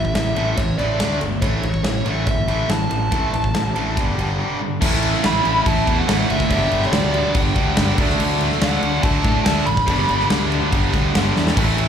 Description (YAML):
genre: hard rock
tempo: 142 BPM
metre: 4/4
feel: straight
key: A mixolydian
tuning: A4 = 437 Hz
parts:
  - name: biting lead guitar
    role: melody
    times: 0.0-10.3 s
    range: C#5 to B5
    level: -23 LUFS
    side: right 1 dB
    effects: overdrive, slapback echo, tape echo
  - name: distorted electric guitar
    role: riff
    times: 0.0-11.9 s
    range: G2 to D4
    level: -26 LUFS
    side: right 9 dB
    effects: overdrive, slapback echo
  - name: tight distorted guitar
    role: riff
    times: 0.0-11.9 s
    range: G2 to D4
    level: -26 LUFS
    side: left 9 dB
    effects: distortion, slapback echo
  - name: fuzz fingered electric bass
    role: bass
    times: 0.0-11.9 s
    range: F#1 to A2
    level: -22 LUFS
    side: equal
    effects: overdrive
  - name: huge arena drum kit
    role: drums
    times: 0.0-11.9 s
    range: crash cymbal, kick drum, ride cymbal, snare drum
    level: -22 LUFS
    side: equal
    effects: none
  - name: tight distorted guitar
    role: riff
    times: 4.8-11.9 s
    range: G2 to E4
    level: -24 LUFS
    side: equal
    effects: distortion, slapback echo
room: light reverb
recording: live gig heard through the venue's PA, club reverb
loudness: -16 LUFS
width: side -8 dB against mid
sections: 0.0-4.8 A section; 4.8-11.9 B section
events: break 4.4-4.8; drum fill 11.4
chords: 0.0 A; 1.0 D5; 1.4 A; 4.0 G5; 4.8 A; 6.5 G; 8.0 D; 9.9 G